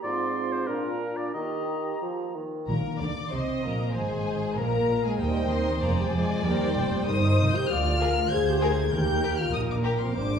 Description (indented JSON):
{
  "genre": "quick classical-period movement for symphony orchestra",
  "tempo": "96 BPM",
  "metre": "2/4",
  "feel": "rubato",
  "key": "Eb major",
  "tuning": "A4 = 442 Hz",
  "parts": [
    { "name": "large flute ensemble", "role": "second line", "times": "0.0-2.3 s", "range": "Bb5 to C6", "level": "-36 LUFS", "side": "right 2 dB", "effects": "none" },
    { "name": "warm clarinet", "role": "second line", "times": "0.0-2.4 s", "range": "D4 to G4", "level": "-39 LUFS", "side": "equal", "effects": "none" },
    { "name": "warm oboe", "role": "second line", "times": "0.0-2.0 s", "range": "Bb4 to Eb5", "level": "-33 LUFS", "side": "equal", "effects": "none" },
    { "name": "mellow bassoon", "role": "accompaniment", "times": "0.0-2.7 s", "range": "Ab2 to F3", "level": "-33 LUFS", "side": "right 2 dB", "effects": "none" },
    { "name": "warm French horn section", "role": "sustained chords", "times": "0.0-10.4 s", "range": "G3 to Ab4", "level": "-30 LUFS", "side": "left 2 dB", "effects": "none" },
    { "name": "dark chamber violin section", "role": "melody", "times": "2.7-10.4 s", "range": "G5 to Ab6", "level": "-33 LUFS", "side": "left 4 dB", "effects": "none" },
    { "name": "rich chamber violin section", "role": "second line", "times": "2.7-10.0 s", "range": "G4 to Eb5", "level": "-33 LUFS", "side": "left 3 dB", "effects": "none" },
    { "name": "dark chamber double bass section", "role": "bass", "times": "2.7-10.4 s", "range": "F1 to F2", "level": "-29 LUFS", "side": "right 2 dB", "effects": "none" },
    { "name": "warm chamber cello section", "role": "bass", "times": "2.7-10.4 s", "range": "D2 to F3", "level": "-31 LUFS", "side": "right 2 dB", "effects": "none" },
    { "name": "timpani", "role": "percussion", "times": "2.7-3.3, 8.9-9.8 s", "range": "Eb3", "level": "-33 LUFS", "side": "left 2 dB", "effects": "none" },
    { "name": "warm studio viola section", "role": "accompaniment", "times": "3.3-10.4 s", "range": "Bb4 to Eb5", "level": "-33 LUFS", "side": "equal", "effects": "none" }
  ],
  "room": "wet recital hall reverb, RT60 1.3 s",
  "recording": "heard from further back in the room",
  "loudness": "-24 LUFS",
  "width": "side -7 dB against mid",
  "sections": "0.0-2.7 A section; 2.7-10.4 A section",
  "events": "none",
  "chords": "0.0 Fm/Ab; 0.7 Bb; 1.3 Eb; 2.7 Bb; 3.3 Eb5; 3.9 Abadd9; 5.2 Eb; 5.8 Ddim/F; 6.5 Eb; 7.7 Bb7/D; 8.9 Eb"
}